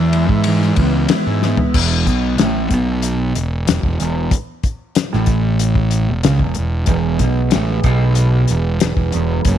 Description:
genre	psychedelic rock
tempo	94 BPM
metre	4/4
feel	straight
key	E major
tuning	A4 = 440 Hz
part	mellow tonewheel organ	sustained chords	0.0-1.7, 6.9-9.6 s	E3 to B5	-27 LUFS	right 10 dB	slow rotary speaker
part	mellow electric guitar	riff	0.0-9.6 s	E2 to E4	-18 LUFS	right 1 dB	phaser, double-tracked left and right
part	fuzz fingered electric bass	bass	0.0-9.6 s	E1 to G#2	-18 LUFS	right 1 dB	overdrive
part	damped 70s drum kit	drums	0.1-9.6 s	crash cymbal, hi-hat, kick drum, ride cymbal, snare drum, toms	-18 LUFS	left 3 dB	none
room	light reverb, studio ambience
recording	1960s-style stereo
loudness	-14 LUFS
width	side -10 dB against mid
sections	0.0-1.8 A section; 1.8-9.6 B section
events	drum fill 1.4-1.8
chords	0.0 E

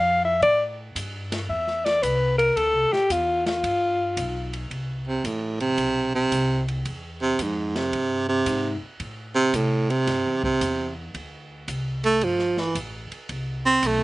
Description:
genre	jazz, small-group swing and bop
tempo	112 BPM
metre	4/4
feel	swing 68% on 8ths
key	unclear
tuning	A4 = 441 Hz
part	breathy alto saxophone	melody	0.0-4.6 s	F4 to F5	-20 LUFS	left 1 dB	slapback echo
part	upright bass	bass	0.0-14.0 s	G1 to C3	-30 LUFS	equal	none
part	open jazz drum kit	drums	0.4-14.0 s	hi-hat, kick drum, ride cymbal, snare drum	-35 LUFS	equal	none
part	clear baritone saxophone	second line	5.1-14.0 s	G#2 to C4	-22 LUFS	right 2 dB	none
room	little or no reverb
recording	recorded outdoors, with no room sound, nothing above 10.9 kHz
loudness	-22 LUFS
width	side -19 dB against mid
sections	0.0-4.7 A section; 4.7-14.0 A section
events	alto saxophone solo 0.0-4.7; baritone saxophone solo 4.7-14.0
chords	0.4 Am7; 2.6 Dsus2; 3.6 G7; 4.7 Amadd9; 6.8 Eaug; 9.0 Am; 11.1 Amadd11 (rootless); 12.2 Gsus2; 13.3 Amadd9

